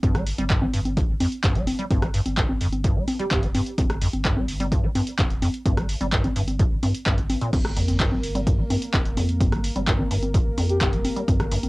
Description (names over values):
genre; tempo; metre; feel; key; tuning
acid house; 128 BPM; 4/4; straight; G minor; A4 = 440 Hz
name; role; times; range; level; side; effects
deep acid bass; riff; 0.0-11.6 s; G1 to G3; -26 LUFS; equal; wide subtle chorus, sidechain pumping, cassette tape
warm sub bass; bass; 0.0-11.7 s; F1 to G1; -30 LUFS; equal; tube saturation, sidechain pumping
electronic kick drum; drums; 0.0-11.4 s; none; -24 LUFS; equal; cassette tape
punchy analog drum machine; drums; 0.0-11.7 s; congas, crash cymbal, handclaps, hi-hat, rim click; -26 LUFS; equal; cassette tape
breathy flute-like synth lead; melody; 3.2-3.4, 10.7-10.9 s; G4; -29 LUFS; equal; analog chorus, cassette tape, analog delay
warm analog pad; sustained chords; 7.7-11.7 s; Bb3 to Bb4; -33 LUFS; right 1 dB; chorus, sidechain pumping, cassette tape
room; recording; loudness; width
light reverb; home recording on cassette; -20 LUFS; side -22 dB against mid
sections
0.0-11.7 A section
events
none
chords
0.0 Gm7